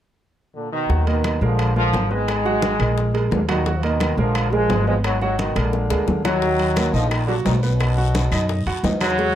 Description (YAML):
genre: latin, salsa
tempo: 174 BPM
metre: 4/4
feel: straight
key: Eb harmonic minor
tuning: A4 = 441 Hz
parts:
  - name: bright trombone section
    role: melody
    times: 0.6-9.3 s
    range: Gb2 to Ab3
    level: -23 LUFS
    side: left 1 dB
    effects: none
  - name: clear baby grand piano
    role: accompaniment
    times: 0.9-9.3 s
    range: Gb3 to Gb5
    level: -25 LUFS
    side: right 4 dB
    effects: none
  - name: upright bass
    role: bass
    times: 0.9-9.3 s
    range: Ab1 to F#2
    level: -21 LUFS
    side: equal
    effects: none
  - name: bongos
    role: percussion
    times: 0.9-9.3 s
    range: none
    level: -32 LUFS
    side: left 5 dB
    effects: none
  - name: congas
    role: percussion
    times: 0.9-9.3 s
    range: none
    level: -28 LUFS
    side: equal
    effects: none
  - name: timbales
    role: percussion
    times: 1.1-9.2 s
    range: none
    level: -30 LUFS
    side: right 2 dB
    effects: none
  - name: claves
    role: percussion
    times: 1.2-9.2 s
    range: none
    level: -35 LUFS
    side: left 7 dB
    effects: none
  - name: guiro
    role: percussion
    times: 6.4-9.3 s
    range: none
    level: -36 LUFS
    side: left 8 dB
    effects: none
room: light reverb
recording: close, detailed microphones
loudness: -18 LUFS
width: side -11 dB against mid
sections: 0.9-6.4 A section; 6.4-9.3 B section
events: drum fill 5.6-6.4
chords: 0.0 N.C.; 0.9 Ebm; 1.6 Bb7; 2.3 Abm7; 3.0 Bb7(#5, no3); 4.4 Bb7; 5.0 Abm7; 5.7 Bb7; 6.4 Ebm; 7.8 B